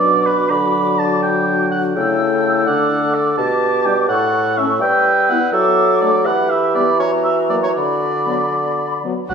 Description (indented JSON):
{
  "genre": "quick classical-period movement for symphony orchestra",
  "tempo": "77-85 BPM (dotted quarters)",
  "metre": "6/8",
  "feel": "rubato",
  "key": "B minor",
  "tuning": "A4 = 440 Hz",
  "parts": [
    { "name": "large flute ensemble", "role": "second line", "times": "0.0-9.0 s", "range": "A#5 to E6", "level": "-23 LUFS", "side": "left 1 dB", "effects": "none" },
    { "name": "warm clarinet", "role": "second line", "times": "0.0-9.0 s", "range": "F#4 to B4", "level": "-22 LUFS", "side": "left 5 dB", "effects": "none" },
    { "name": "warm oboe", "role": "second line", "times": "0.0-9.3 s", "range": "B4 to B5", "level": "-18 LUFS", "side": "right 2 dB", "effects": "none" },
    { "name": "mellow bassoon", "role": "accompaniment", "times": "0.0-9.0 s", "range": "A2 to G3", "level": "-19 LUFS", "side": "right 2 dB", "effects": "none" },
    { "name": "mellow French horn section", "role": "sustained chords", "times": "0.0-9.1 s", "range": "F#3 to E4", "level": "-23 LUFS", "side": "left 3 dB", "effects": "none" },
    { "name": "warm studio violin section", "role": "melody", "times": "9.3 s", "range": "none", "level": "barely audible", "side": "none", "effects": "none" },
    { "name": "rich studio violin section", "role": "second line", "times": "9.3 s", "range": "B3 to D4", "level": "-37 LUFS", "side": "left 1 dB", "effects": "none" },
    { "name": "warm studio viola section", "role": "accompaniment", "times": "9.3 s", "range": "F#4", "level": "-27 LUFS", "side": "right 2 dB", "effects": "none" },
    { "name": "dark studio cello section", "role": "bass", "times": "9.3 s", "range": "F#3", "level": "-27 LUFS", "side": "right 1 dB", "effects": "none" },
    { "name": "dark studio double bass section", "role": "bass", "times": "9.3 s", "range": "B1", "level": "-33 LUFS", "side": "right 3 dB", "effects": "none" }
  ],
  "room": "wet scoring stage reverb, RT60 1.9 s",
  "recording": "minimal, uncompressed stereo recording",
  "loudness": "-14 LUFS",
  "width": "side -6 dB against mid",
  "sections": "0.0-9.3 A section",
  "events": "none",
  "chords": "0.0 Bm; 0.5 D; 2.0 A7/C#; 2.7 D; 3.4 G/B; 4.1 F#m/A; 4.8 Em/G; 5.5 D/F#; 6.3 Em; 7.0 F#7/E; 7.8 Bm/D"
}